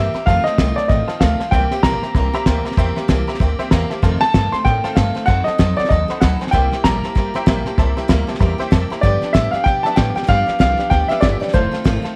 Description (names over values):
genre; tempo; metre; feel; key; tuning
rockabilly; 192 BPM; 4/4; swing 60% on 8ths; C mixolydian; A4 = 440 Hz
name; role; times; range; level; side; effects
dark upright piano; melody; 0.0-12.0 s; C5 to C6; -22 LUFS; equal; none
honky-tonk upright piano; accompaniment; 0.0-12.1 s; B4 to C6; -31 LUFS; equal; none
picked steel-string acoustic guitar; accompaniment; 0.0-12.2 s; F2 to A4; -26 LUFS; equal; none
upright bass; bass; 0.0-12.1 s; F1 to B2; -23 LUFS; equal; none
cloth-damped thuddy drum kit; drums; 0.1-12.1 s; hi-hat, kick drum, snare drum; -20 LUFS; equal; none
room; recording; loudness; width
light reverb, studio reverb; none; -17 LUFS; mono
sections
0.0-12.2 A section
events
none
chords
0.3 F7; 1.5 C7; 4.0 F7; 5.3 F#dim7; 6.5 C7; 9.0 G7; 11.5 F7